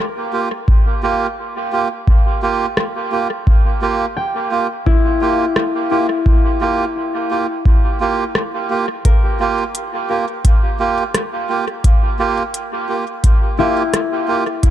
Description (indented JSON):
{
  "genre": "ambient dub",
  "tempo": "86 BPM",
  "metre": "4/4",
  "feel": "swing 57% on 16ths",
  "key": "G dorian",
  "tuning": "A4 = 440 Hz",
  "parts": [
    { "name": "concert harp", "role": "arpeggios", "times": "0.0-14.7 s", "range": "E4 to G5", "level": "-21 LUFS", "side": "left 5 dB", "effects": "low-pass filter, tape echo" },
    { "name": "melodica", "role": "stabs", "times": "0.3-14.4 s", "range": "Bb3 to G4", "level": "-19 LUFS", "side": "right 4 dB", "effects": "vintage 12-bit sampler grit, dub echo" },
    { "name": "electronic kick drum", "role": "drums", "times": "0.7-14.7 s", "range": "none", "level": "-13 LUFS", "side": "equal", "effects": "overdrive" },
    { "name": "organic electronic drum kit", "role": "drums", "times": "2.8-14.7 s", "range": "hi-hat, rim click", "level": "-24 LUFS", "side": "equal", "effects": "dub echo" }
  ],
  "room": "light reverb",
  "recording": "echo-heavy mix",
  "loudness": "-14 LUFS",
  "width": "side -12 dB against mid",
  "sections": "0.0-14.7 A section",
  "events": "filter sweep on harp 0.0-14.7",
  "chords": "0.0 Gm7"
}